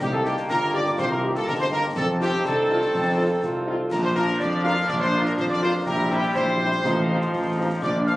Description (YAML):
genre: military-style march for wind band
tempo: 123 BPM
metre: 2/4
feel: straight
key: unclear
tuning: A4 = 440 Hz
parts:
  - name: dark trumpet section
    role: melody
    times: 0.0-8.2 s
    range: G4 to F5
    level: -28 LUFS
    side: equal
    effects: none
  - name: clear euphonium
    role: second line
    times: 0.0-8.2 s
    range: C4 to G4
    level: -32 LUFS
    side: right 1 dB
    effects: none
  - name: glockenspiel with soft plastic mallets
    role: second line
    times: 0.0-8.2 s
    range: G5 to F6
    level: -32 LUFS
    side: left 2 dB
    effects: none
  - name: mellow hollow wooden piccolo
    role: second line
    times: 0.0-8.1 s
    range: G5 to F6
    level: -30 LUFS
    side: left 1 dB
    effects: none
  - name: warm woodwind section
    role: second line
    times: 0.0-8.2 s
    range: G4 to F5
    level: -30 LUFS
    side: equal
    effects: none
  - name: warm trombone section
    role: sustained chords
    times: 0.0-8.2 s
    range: Eb3 to E4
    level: -28 LUFS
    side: equal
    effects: none
  - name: mellow tuba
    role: bass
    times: 0.0-8.2 s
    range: G1 to F2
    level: -26 LUFS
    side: equal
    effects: none
  - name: concert snare drum, clash cymbals and concert bass drum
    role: drums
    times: 0.0-8.2 s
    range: none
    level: -36 LUFS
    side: equal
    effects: none
  - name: mellow French horn section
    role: accompaniment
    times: 0.2-8.2 s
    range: F3 to G4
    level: -29 LUFS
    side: left 2 dB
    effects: none
room: moderate studio ambience, RT60 0.5 s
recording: recorded on a phone in the room, club reverb, compression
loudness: -20 LUFS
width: side -17 dB against mid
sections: 0.0-8.2 A section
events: none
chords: 0.0 Cm7; 2.0 F7; 3.9 Bb; 5.9 C7/Bb; 6.8 F7/A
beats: | 0.01 0.50 | 0.99 1.48 | 1.96 2.45 | 2.94 3.43 | 3.92 4.41 | 4.89 5.38 | 5.87 6.36 | 6.85 7.34 | 7.83